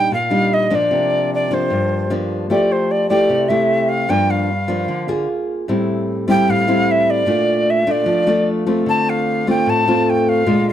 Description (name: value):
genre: bossa nova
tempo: 151 BPM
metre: 4/4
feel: straight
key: F major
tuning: A4 = 441 Hz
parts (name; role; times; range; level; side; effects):
- breathy bright jazz flute; melody; 0.0-10.7 s; C5 to A5; -18 LUFS; right 1 dB; none
- nylon-string guitar; accompaniment; 0.0-10.7 s; G2 to Ab4; -17 LUFS; left 1 dB; none
room: studio reverb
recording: dry, close 1970s-style studio recording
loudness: -15 LUFS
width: side -10 dB against mid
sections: 0.0-10.7 A section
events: none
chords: 0.0 Ebmaj7/Bb; 0.9 C9sus4; 2.5 Fmaj9; 4.1 Gm7; 5.3 Fmadd11/Bb; 5.7 Fmaj9/A; 7.3 Bbmaj7; 8.9 Dm7